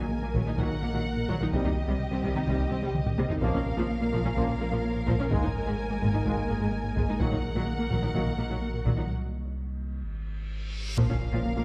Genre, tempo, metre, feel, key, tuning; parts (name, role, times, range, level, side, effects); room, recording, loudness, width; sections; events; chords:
cinematic, hybrid orchestral and electronic film score; 127 BPM; 4/4; straight; Bb minor; A4 = 440 Hz
warm symphonic violin section; melody; 0.0-11.6 s; Eb5 to Ab5; -42 LUFS; equal
dark symphonic violin section; second line; 0.0-11.6 s; G4 to Bb4; -41 LUFS; equal
warm symphonic viola section; accompaniment; 0.0-11.6 s; F3 to Eb4; -38 LUFS; equal
evolving wavetable pad; sustained chords; 0.0-11.6 s; Eb3 to Eb5; -40 LUFS; equal
warbly dusty pluck; arpeggios; 0.0-11.6 s; C3 to Ab4; -40 LUFS; equal
round analog bass; riff; 0.0-11.6 s; C2 to Bb3; -37 LUFS; equal
rich symphonic cello section; bass; 0.0-11.6 s; Ab2 to C3; -37 LUFS; equal
saturated sub bass; bass; 0.0-11.6 s; Ab1 to C2; -37 LUFS; equal
warm studio double bass section; bass; 0.3-11.0 s; Ab1 to C2; -36 LUFS; equal
taiko ensemble; drums; 0.3-11.4 s; -37 LUFS; equal
bright trombone section; sustained chords; 0.6-11.6 s; Eb3 to Bb3; -42 LUFS; equal
mellow French horn section; sustained chords; 0.6-11.6 s; Bb3 to Eb4; -42 LUFS; equal
reverse cymbal and impact; sound effects; 10.3-11.6 s; -43 LUFS; equal
moderate scoring stage reverb, RT60 1.8 s; -29 LUFS; mono
0.0-11.0 A section
drum fill 3.0-3.4, 10.5-11.0; break 9.1-11.0; reverse cymbal 10.3-11.0; impact 11.0-11.6
0.0 Ebm/Bb; 1.5 Cm; 3.4 Bbm; 5.3 Absus2; 7.2 Ebm/Bb; 9.1 N.C.; 11.0 Bbm